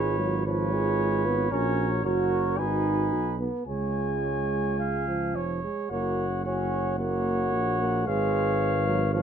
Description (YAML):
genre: classical, brass quintet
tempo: 111 BPM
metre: 4/4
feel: rubato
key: F# major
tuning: A4 = 436 Hz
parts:
  - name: mellow trumpet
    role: melody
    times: 0.0-9.2 s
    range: C#5 to G#5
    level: -32 LUFS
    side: left 6 dB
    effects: none
  - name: warm flugelhorn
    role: second line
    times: 0.0-9.2 s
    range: A#4 to E#5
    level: -33 LUFS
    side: right 7 dB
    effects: none
  - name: clear trombone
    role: accompaniment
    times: 0.0-9.2 s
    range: E#3 to F#4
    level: -30 LUFS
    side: right 4 dB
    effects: none
  - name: mellow French horn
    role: accompaniment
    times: 0.0-9.2 s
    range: E#4 to B4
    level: -33 LUFS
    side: left 6 dB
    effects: none
  - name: mellow tuba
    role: bass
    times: 0.0-9.2 s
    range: E#1 to C#2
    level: -29 LUFS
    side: right 2 dB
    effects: none
room: light reverb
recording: close, detailed microphones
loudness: -24 LUFS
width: side -8 dB against mid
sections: 0.0-9.2 A section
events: none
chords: 0.0 C#7/G#; 1.5 F#/A#; 2.6 G#m7; 3.7 C#; 5.9 F#; 8.1 C#7/G#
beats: 0.47 0.99 | 1.52 2.05 2.58 3.12 | 3.67 4.24 4.80 5.35 | 5.91 6.45 6.99 7.53 | 8.07 8.61 9.14